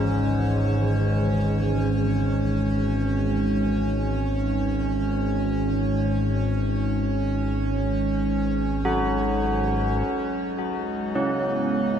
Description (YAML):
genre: dark ambient drone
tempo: free time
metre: none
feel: none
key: unclear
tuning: A4 = 440 Hz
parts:
  - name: old church bells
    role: arpeggios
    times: 0.0-12.0 s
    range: C#3 to F#4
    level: -29 LUFS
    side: equal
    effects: ping-pong delay
  - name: analog drone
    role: drone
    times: 0.0-12.0 s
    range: G#1 to G#2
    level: -24 LUFS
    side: equal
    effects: chorus
  - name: metallic inharmonic drone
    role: texture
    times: 0.0-12.0 s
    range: C#4 to D#4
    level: -28 LUFS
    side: right 3 dB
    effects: chorus, built-in reverb
  - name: sweeping resonant pad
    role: sustained chords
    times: 10.1-12.0 s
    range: G#3 to B3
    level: -29 LUFS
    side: right 2 dB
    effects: chorus, phaser
room: moderate huge ambient reverb, RT60 7.4 s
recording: in a vast, echoing space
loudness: -22 LUFS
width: side -8 dB against mid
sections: 0.0-10.1 A section; 10.1-12.0 B section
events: none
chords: 0.0 G#7sus4; 10.1 G#m